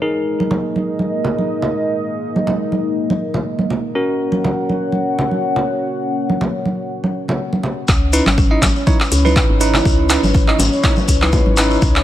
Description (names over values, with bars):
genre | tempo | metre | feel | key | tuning
afro house | 122 BPM | 4/4 | swing 54% on 16ths | C# dorian | A4 = 443 Hz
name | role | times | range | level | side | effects
dark analog pad | sustained chords | 0.0-12.0 s | E3 to A#5 | -22 LUFS | left 2 dB | chorus, phaser, sidechain pumping
bell-like tine electric piano | stabs | 0.0-12.0 s | C#4 to D#5 | -22 LUFS | moving between left 1 dB and right 7 dB | auto-pan, sidechain pumping, low-pass filter, digital delay
congas | percussion | 0.4-11.6 s | none | -21 LUFS | right 1 dB | none
marimba with soft mallets | arpeggios | 7.9-11.9 s | C#4 to C#5 | -22 LUFS | equal | sidechain pumping, digital delay
woody FM bass | bass | 7.9-12.0 s | G#1 to C#2 | -18 LUFS | equal | tube saturation, sidechain pumping
afro-pop drum kit | drums | 7.9-12.0 s | handclaps, hi-hat | -20 LUFS | equal | none
electronic kick drum | drums | 7.9-11.9 s | none | -15 LUFS | equal | none
shekere | percussion | 7.9-11.9 s | none | -27 LUFS | left 3 dB | none
room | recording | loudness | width
light reverb, studio reverb | none | -14 LUFS | side -12 dB against mid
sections
0.0-7.9 A section; 7.9-12.0 B section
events
drop 7.9-12.0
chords
0.0 G#sus2; 4.0 F#; 7.9 C#m7